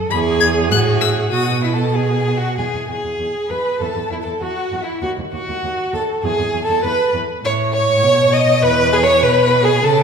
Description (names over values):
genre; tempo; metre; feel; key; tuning
quick classical-period movement for string quartet; 99 BPM; 2/4; rubato; E major; A4 = 441 Hz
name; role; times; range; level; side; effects
clear viola; accompaniment; 0.0-10.0 s; E4 to D#5; -21 LUFS; right 3 dB; none
rich violin; melody; 0.1-10.0 s; E5 to G#6; -24 LUFS; left 7 dB; none
rich violin; second line; 0.1-10.0 s; E4 to D#5; -18 LUFS; left 1 dB; none
rich cello; bass; 0.1-10.0 s; D#2 to C#3; -21 LUFS; right 3 dB; none
room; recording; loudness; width
wet scoring stage reverb, RT60 2.2 s; recorded in a church or concert hall; -15 LUFS; side -6 dB against mid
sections
0.0-2.6 A section; 2.6-10.0 B section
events
none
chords
0.1 E; 0.7 F#m/A; 1.3 B5; 2.6 E; 5.0 D#dim; 6.2 Eadd11; 7.4 A; 8.0 B; 8.6 E5; 9.2 G#m/B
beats
| 0.11 0.71 | 1.32 1.95 | 2.58 3.20 | 3.81 4.42 | 5.03 5.64 | 6.24 6.84 | 7.43 8.03 | 8.63 9.23 | 9.83